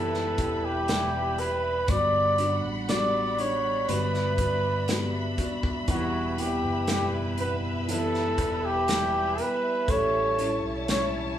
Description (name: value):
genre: pop ballad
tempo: 60 BPM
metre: 4/4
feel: straight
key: unclear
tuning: A4 = 441 Hz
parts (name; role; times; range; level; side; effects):
- warm flugelhorn; melody; 0.0-11.1 s; F#4 to D5; -27 LUFS; equal; none
- dark upright piano; accompaniment; 0.0-11.4 s; E3 to G4; -34 LUFS; right 3 dB; none
- warm studio string section; sustained chords; 0.0-11.4 s; G3 to B5; -35 LUFS; right 1 dB; none
- fingerpicked steel-string acoustic guitar; arpeggios; 0.0-11.4 s; E2 to G4; -34 LUFS; left 3 dB; none
- fingered electric bass; bass; 0.0-11.4 s; E1 to B1; -33 LUFS; left 1 dB; none
- loose indie drum kit; drums; 0.1-11.1 s; hi-hat, kick drum, snare drum; -30 LUFS; equal; none
room: wet large studio reverb, RT60 1.0 s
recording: band playing live in one room, small room ambience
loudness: -24 LUFS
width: side -10 dB against mid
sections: 0.0-11.4 A section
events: none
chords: 0.0 Em; 1.9 Gmaj7; 5.9 Em; 9.9 A7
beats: 0.88 | 1.88 2.88 3.88 4.88 | 5.88 6.88 7.88 8.88 | 9.88 10.88